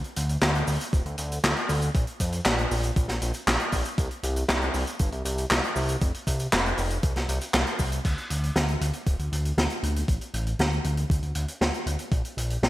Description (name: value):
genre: synthwave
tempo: 118 BPM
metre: 4/4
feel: straight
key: D minor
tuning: A4 = 441 Hz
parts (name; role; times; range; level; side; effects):
- vintage drum kit; drums; 0.0-12.7 s; cabasa, crash cymbal, handclaps, hi-hat, snare drum; -27 LUFS; equal; gated reverb
- fat analog bass; bass; 0.2-12.7 s; D1 to F2; -27 LUFS; equal; sidechain pumping
- electronic kick drum; drums; 0.9-12.2 s; none; -26 LUFS; equal; overdrive
room: light reverb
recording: bright 1980s-style digital production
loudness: -24 LUFS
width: side -16 dB against mid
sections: 0.0-8.0 A section; 8.0-12.7 B section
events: none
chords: none